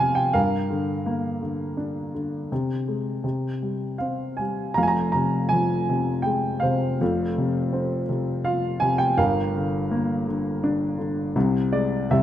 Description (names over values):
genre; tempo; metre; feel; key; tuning
classical, lyrical solo piano; 82 BPM; 3/4; rubato; F dorian; A4 = 441 Hz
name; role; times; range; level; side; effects
dark grand piano; solo; 0.0-12.2 s; F1 to Bb5; -22 LUFS; equal; none
room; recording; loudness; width
moderate concert hall reverb, RT60 2.3 s; none; -22 LUFS; side -11 dB against mid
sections
0.0-4.8 A section; 4.8-12.2 A section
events
grand piano fill 11.4-12.2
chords
0.3 Gm7; 2.5 Fm/C; 3.2 C5; 4.8 Fm; 9.2 Gm7; 11.4 Fm/C